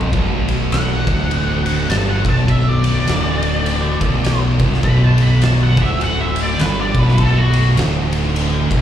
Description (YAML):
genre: stoner and doom metal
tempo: 102 BPM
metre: 4/4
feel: swing 60% on 8ths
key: B minor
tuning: A4 = 441 Hz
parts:
  - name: high-gain distorted guitar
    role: riff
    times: 0.0-8.8 s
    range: B1 to G2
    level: -23 LUFS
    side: equal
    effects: distortion, slapback echo
  - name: thick fuzz guitar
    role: riff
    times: 0.0-8.8 s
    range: B1 to G2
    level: -21 LUFS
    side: left 5 dB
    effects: distortion
  - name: thick fuzz guitar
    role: riff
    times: 0.0-8.8 s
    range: B1 to G2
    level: -20 LUFS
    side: right 5 dB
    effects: distortion
  - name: fingered electric bass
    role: bass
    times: 0.0-8.8 s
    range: B0 to G1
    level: -21 LUFS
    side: equal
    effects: overdrive
  - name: oversized low-tuned drum kit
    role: drums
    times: 0.0-8.8 s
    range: kick drum, ride cymbal, snare drum, toms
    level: -20 LUFS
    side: equal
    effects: none
  - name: octave-fuzz lead guitar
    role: melody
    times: 0.7-7.7 s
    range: F#4 to B5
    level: -23 LUFS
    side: equal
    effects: wah, distortion, slapback echo, analog delay
room: light reverb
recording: live gig heard through the venue's PA, club reverb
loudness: -14 LUFS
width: side -10 dB against mid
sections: 0.1-8.8 A section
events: lead electric guitar solo 0.1-8.8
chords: 0.1 Bm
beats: | 0.13 0.72 1.31 1.90 | 2.48 3.07 3.66 4.25 | 4.84 5.42 6.01 6.60 | 7.19 7.77 8.36